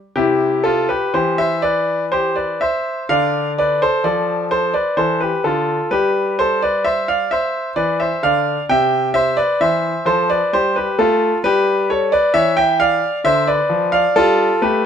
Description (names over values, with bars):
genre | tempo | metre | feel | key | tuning
classical, baroque-style suite movement for grand piano | 65 BPM | 3/4 | rubato | C major | A4 = 439 Hz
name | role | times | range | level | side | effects
bright grand piano | solo | 0.2-14.9 s | C3 to G5 | -15 LUFS | equal | none
room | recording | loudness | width
moderate stone room reverb, RT60 1.2 s | none | -15 LUFS | side -8 dB against mid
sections
0.2-14.9 A section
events
none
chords
0.2 C; 3.1 Dm; 8.7 C; 11.4 A7/G (rootless); 13.2 Dm; 14.2 G7